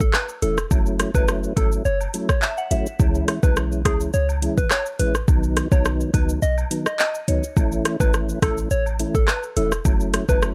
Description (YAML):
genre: dancehall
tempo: 105 BPM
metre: 4/4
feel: straight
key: unclear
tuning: A4 = 440 Hz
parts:
  - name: soft struck synth lead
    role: melody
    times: 0.0-10.4 s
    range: G#4 to D#5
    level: -28 LUFS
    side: equal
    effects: chorus
  - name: clean 808-style bass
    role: bass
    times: 0.0-10.5 s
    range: E1 to C#2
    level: -26 LUFS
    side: equal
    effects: none
  - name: afro-pop drum kit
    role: drums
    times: 0.0-10.5 s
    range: handclaps, hi-hat, kick drum, rim click, shaker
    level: -23 LUFS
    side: equal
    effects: none
  - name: woodblock and cabasa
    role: percussion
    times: 0.1-10.4 s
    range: none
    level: -40 LUFS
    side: equal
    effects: none
  - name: mellow tonewheel organ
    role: accompaniment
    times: 0.4-10.5 s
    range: D#3 to E4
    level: -28 LUFS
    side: equal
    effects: chorus vibrato, slow rotary speaker
  - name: soft synth bell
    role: second line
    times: 2.4-3.2, 7.0-7.8 s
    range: C#5 to F#5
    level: -31 LUFS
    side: equal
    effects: chorus, phaser, tape echo
room: digital ambience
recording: dry, gritty hardware recording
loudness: -21 LUFS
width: mono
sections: 0.0-10.5 A section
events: break 6.4-7.6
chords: 0.0 A; 0.7 F#m7; 3.0 C#m; 5.3 B; 7.6 A; 9.9 F#m7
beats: 0.14 | 0.71 1.28 1.85 2.42 | 3.00 3.57 4.14 4.71 | 5.28 5.85 6.42 7.00 | 7.57 8.14 8.71 9.28 | 9.85 10.42